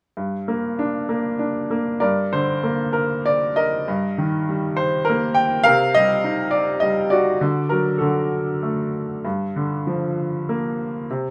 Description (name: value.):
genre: classical, lyrical solo piano.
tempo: 94-104 BPM.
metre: 3/4.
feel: rubato.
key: G minor.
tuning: A4 = 440 Hz.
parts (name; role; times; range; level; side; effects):
bright upright piano; solo; 0.2-11.3 s; G2 to G5; -21 LUFS; equal; none.
room: light reverb.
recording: close, detailed microphones.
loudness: -21 LUFS.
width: mono.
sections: 0.2-2.0 A section; 2.0-11.3 B section.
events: upright piano fill 11.1.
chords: 0.2 Gm; 3.9 Eb/G; 5.7 Cm7; 7.4 D; 9.2 Gm7.